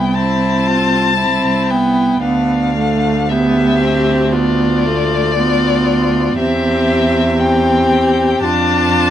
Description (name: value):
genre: classical, slow romantic movement for string quartet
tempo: 57 BPM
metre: 4/4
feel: rubato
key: C major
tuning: A4 = 444 Hz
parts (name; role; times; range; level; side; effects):
- rich violin; melody; 0.0-9.1 s; D5 to A5; -18 LUFS; left 5 dB; none
- rich violin; second line; 0.0-9.1 s; D4 to G4; -20 LUFS; left 3 dB; none
- rich viola; accompaniment; 0.0-9.1 s; A3 to D4; -17 LUFS; right 2 dB; none
- rich cello; bass; 0.0-9.1 s; C2 to F2; -18 LUFS; right 2 dB; none
room: light reverb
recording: dark, warm production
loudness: -12 LUFS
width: side -10 dB against mid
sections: 0.0-9.1 A section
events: none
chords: 0.0 C; 2.2 Bdim/D; 6.4 C/E; 8.4 Dm/F